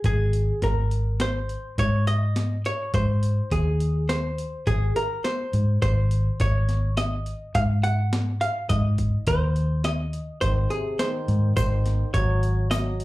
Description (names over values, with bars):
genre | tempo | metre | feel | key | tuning
progressive instrumental, band music in an uneven meter | 104 BPM | 5/4 | straight | Ab mixolydian | A4 = 438 Hz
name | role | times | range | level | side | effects
archtop guitar, miked and amplified | melody | 0.0-13.0 s | Ab4 to Gb5 | -28 LUFS | equal | slapback echo
fingered electric bass | bass | 0.0-13.0 s | Ab1 to Ab2 | -22 LUFS | equal | none
boom bap sampler-style drum kit | drums | 0.0-13.0 s | hi-hat, kick drum, snare drum | -29 LUFS | equal | overdrive
warm trombone | second line | 10.4-13.0 s | C3 to Gb3 | -33 LUFS | right 2 dB | slapback echo
egg shaker | percussion | 11.6-13.0 s | none | -47 LUFS | left 3 dB | none
room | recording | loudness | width
little or no reverb | live gig heard through the venue's PA, club reverb | -21 LUFS | side -18 dB against mid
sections
0.0-13.0 A section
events
none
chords
0.0 Ab5